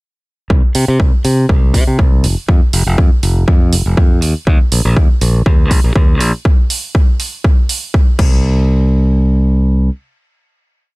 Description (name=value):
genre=filtered disco house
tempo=121 BPM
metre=4/4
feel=straight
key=unclear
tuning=A4 = 440 Hz
part: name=modern bright fingered electric bass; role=bass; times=0.5-9.9 s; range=F1 to C3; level=-12 LUFS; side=equal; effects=sidechain pumping, low-pass filter
part: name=electronic kick drum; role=drums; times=0.5-8.3 s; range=none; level=-10 LUFS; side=equal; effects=overdrive
part: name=house drum kit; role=drums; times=0.7-8.3 s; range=crash cymbal, hi-hat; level=-22 LUFS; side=right 4 dB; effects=overdrive, sidechain pumping on hats, sidechain pumping on cymbals
room=little or no reverb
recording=none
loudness=-10 LUFS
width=side -24 dB against mid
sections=0.5-8.4 groove; 8.4-11.0 final hit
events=filter sweep on fingered electric bass 0.5-8.4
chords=none